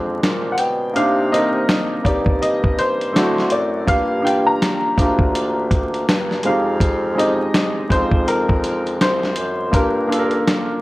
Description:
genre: lo-fi hip hop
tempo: 82 BPM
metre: 4/4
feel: swing 59% on 16ths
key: C minor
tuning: A4 = 438 Hz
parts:
  - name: felt-muted upright piano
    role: accompaniment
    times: 0.0-10.8 s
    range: Ab3 to Bb4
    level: -21 LUFS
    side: equal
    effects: cassette tape, low-pass filter
  - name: mellow bassoon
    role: bass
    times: 0.0-10.4 s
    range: C2 to D3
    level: -23 LUFS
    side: equal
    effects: none
  - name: dusty soul sampler-style drum kit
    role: drums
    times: 0.2-10.7 s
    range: hi-hat, kick drum, snare drum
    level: -19 LUFS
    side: equal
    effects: none
  - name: warm upright piano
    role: melody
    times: 0.5-10.8 s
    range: Bb4 to Bb5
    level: -22 LUFS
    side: left 1 dB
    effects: low-pass filter, analog delay
room: moderate studio reverb, RT60 0.6 s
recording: vinyl crackle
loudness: -16 LUFS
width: side -19 dB against mid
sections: 0.0-10.8 A section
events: kick muted 1.0-1.7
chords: 0.0 Bb7; 1.0 Cm7; 3.1 D7; 3.9 Gm7; 6.4 Fm9; 9.7 Gm7

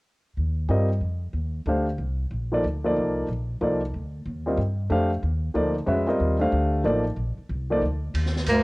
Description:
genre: modal jazz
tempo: 185 BPM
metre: 3/4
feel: swing 64% on 8ths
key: Eb lydian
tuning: A4 = 440 Hz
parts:
  - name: upright bass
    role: bass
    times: 0.4-8.6 s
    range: A1 to G2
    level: -26 LUFS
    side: equal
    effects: none
  - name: warm grand piano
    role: accompaniment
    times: 0.7-7.8 s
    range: F3 to F5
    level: -23 LUFS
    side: equal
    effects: none
  - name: open jazz drum kit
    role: drums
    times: 8.1-8.6 s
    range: hi-hat, ride cymbal, snare drum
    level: -30 LUFS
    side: right 1 dB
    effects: cassette tape
  - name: edgy tenor saxophone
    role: melody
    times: 8.5-8.6 s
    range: Bb3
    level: -20 LUFS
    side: right 1 dB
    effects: none
  - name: warm bass clarinet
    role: second line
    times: 8.5-8.6 s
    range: D2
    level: -21 LUFS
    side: equal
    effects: none
room: light reverb, small room ambience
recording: home recording on cassette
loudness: -23 LUFS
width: side -24 dB against mid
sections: 0.4-8.1 A section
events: none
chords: 0.4 Ebmaj9

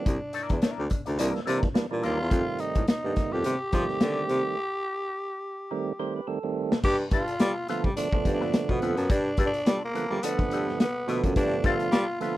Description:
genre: funk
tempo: 106 BPM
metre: 4/4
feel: swing 56% on 16ths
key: G mixolydian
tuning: A4 = 440 Hz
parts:
  - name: growling tenor saxophone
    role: melody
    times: 0.0-12.4 s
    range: Bb3 to G4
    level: -30 LUFS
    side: equal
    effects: none
  - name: percussive tonewheel organ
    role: stabs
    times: 0.0-12.4 s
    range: D3 to C5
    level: -31 LUFS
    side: right 6 dB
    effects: overdrive, stopped rotary speaker
  - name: clear baritone saxophone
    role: bass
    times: 0.1-12.3 s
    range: C2 to G3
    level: -28 LUFS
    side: equal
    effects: none
  - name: vintage drum kit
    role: drums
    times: 0.1-12.4 s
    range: crash cymbal, hi-hat, kick drum, snare drum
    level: -27 LUFS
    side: equal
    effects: none
  - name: electric guitar with an envelope filter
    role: accompaniment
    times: 0.3-2.2, 7.1-12.4 s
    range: E4 to D5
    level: -34 LUFS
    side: left 6 dB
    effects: wah
room: little or no reverb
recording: none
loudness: -24 LUFS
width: side -16 dB against mid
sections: 0.0-6.8 A section; 6.8-12.4 B section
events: break 4.6-6.8; tonewheel organ fill 5.7-6.8; drum fill 6.3-6.8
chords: 0.0 C9; 2.3 F9 (rootless); 6.8 G9

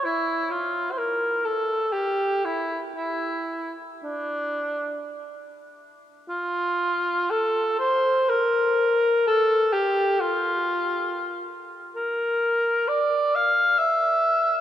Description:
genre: classical, free, expressive piece for unaccompanied cor anglais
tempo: 46-69 BPM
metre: 3/4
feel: rubato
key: unclear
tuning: A4 = 441 Hz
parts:
  - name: mellow cor anglais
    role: solo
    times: 0.0-14.6 s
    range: D4 to F5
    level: -22 LUFS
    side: equal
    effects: none
room: wet cathedral reverb, RT60 4.7 s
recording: none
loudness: -21 LUFS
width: side -11 dB against mid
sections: 0.0-6.3 A section; 6.3-14.6 B section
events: none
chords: none

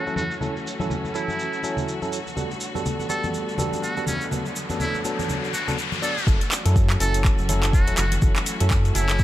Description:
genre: afro house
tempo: 123 BPM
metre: 4/4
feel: swing 58% on 16ths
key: F# phrygian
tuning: A4 = 439 Hz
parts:
  - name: trumpet with metal mute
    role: melody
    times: 0.0-9.2 s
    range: C#4 to A4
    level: -30 LUFS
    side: equal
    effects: analog delay
  - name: clear studio string section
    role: sustained chords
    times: 0.0-9.2 s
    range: D3 to F#4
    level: -32 LUFS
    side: left 1 dB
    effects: sidechain pumping
  - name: tine electric piano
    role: stabs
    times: 0.0-9.2 s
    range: F#3 to D5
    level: -29 LUFS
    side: right 2 dB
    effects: overdrive, medium stereo tremolo, sidechain pumping, dub echo
  - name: congas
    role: percussion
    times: 0.1-6.0 s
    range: none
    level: -31 LUFS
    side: left 1 dB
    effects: dub echo
  - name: tube shaker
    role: percussion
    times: 0.1-9.2 s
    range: none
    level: -34 LUFS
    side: right 2 dB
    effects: dub echo
  - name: riser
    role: sound effects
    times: 3.8-6.3 s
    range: none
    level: -32 LUFS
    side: left 4 dB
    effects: none
  - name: round analog bass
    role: bass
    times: 6.3-9.2 s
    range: E1 to F#2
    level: -22 LUFS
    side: equal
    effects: sidechain pumping
  - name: electronic kick drum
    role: drums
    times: 6.3-9.2 s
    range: none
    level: -20 LUFS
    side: equal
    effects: studio ambience
  - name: afro-pop drum kit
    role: drums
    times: 6.4-9.2 s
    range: handclaps, hi-hat, toms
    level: -27 LUFS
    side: left 1 dB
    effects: studio ambience
room: light reverb, small room reverb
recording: echo-heavy mix, low-pass filter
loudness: -21 LUFS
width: side -14 dB against mid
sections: 0.0-6.3 A section; 6.3-9.2 B section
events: filter sweep 0.0-6.3; riser 3.8-6.3; drop 6.3-9.2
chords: 0.0 F#m7; 2.4 Gmaj9; 4.3 D6; 6.3 F#m7

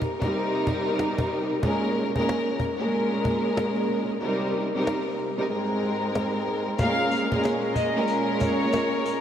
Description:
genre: hip hop, boom-bap hip-hop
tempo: 93 BPM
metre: 4/4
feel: swing 62% on 16ths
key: Bb dorian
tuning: A4 = 440 Hz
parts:
  - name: cajon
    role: drums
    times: 0.0-9.2 s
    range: none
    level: -32 LUFS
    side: equal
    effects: none
  - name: rich studio string section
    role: accompaniment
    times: 0.2-9.2 s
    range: Ab2 to Bb4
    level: -24 LUFS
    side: equal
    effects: cassette tape, high-pass filter, low-pass filter
  - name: warm studio violin section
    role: melody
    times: 6.8-9.2 s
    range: Db5 to F5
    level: -28 LUFS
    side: equal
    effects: high-pass filter, low-pass filter, ping-pong delay
  - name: warm studio string section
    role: sustained chords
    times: 6.8-9.2 s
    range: Bb2 to Bb4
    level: -29 LUFS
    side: equal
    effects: high-pass filter, low-pass filter
  - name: sleigh bells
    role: percussion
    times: 6.8-9.2 s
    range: none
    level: -46 LUFS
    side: left 4 dB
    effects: none
room: wet huge ambient reverb, RT60 8.7 s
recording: dreamy mix soaked in reverb, vinyl crackle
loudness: -23 LUFS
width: side -9 dB against mid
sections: 0.0-6.8 A section; 6.8-9.2 B section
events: kick muted 4.2-6.8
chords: 0.0 Cm7; 1.6 Bbm7; 4.2 Cm7; 5.5 Abadd9; 6.8 Bbm7

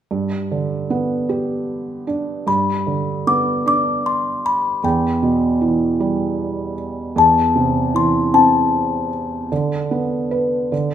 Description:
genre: children's music, lullaby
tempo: 51 BPM (dotted quarters)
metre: 6/8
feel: rubato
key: G major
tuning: A4 = 439 Hz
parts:
  - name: felt-muted upright piano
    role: accompaniment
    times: 0.1-10.9 s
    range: E2 to B4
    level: -19 LUFS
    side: right 3 dB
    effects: none
  - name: music box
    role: melody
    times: 2.5-10.9 s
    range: G5 to D6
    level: -17 LUFS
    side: left 4 dB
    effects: none
room: wet recital hall reverb, RT60 1.4 s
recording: minimal, uncompressed stereo recording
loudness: -16 LUFS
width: side -9 dB against mid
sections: 0.1-2.5 A section; 2.5-10.9 B section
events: felt piano fill 10.7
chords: 0.1 G; 4.8 Em; 7.2 Am/E; 9.5 Bm7/D

